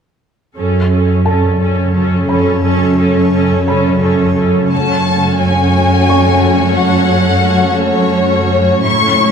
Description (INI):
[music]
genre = cinematic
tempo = 58 BPM (dotted quarters)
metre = 6/8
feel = straight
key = F# minor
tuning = A4 = 436 Hz
[part]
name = rich symphonic viola section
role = accompaniment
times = 0.6-9.3 s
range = A3 to A4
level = -18 LUFS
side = right 2 dB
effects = none
[part]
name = granular cloud pad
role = sustained chords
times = 1.6-9.3 s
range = C#3 to C#5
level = -17 LUFS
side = left 1 dB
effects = built-in reverb
[part]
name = warm symphonic cello section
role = bass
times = 0.6-9.3 s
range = F#2 to A2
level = -14 LUFS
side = right 2 dB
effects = none
[part]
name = felt-muted upright piano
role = texture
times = 1.3-8.9 s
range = A4 to C#6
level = -25 LUFS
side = left 2 dB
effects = ping-pong delay
[part]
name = warm symphonic violin section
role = melody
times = 4.7-9.3 s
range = C#5 to C#6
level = -15 LUFS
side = left 4 dB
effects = none
[part]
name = warm studio violin section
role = second line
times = 4.7-9.3 s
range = E4 to C#5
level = -19 LUFS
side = left 4 dB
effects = none
[sound]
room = moderate scoring stage reverb, RT60 1.7 s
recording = none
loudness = -10 LUFS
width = side -7 dB against mid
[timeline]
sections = 0.6-4.7 A section; 4.7-9.3 B section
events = none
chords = 0.6 F#m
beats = | 0.57 1.60 | 2.64 3.67 | 4.71 5.74 | 6.78 7.81 | 8.85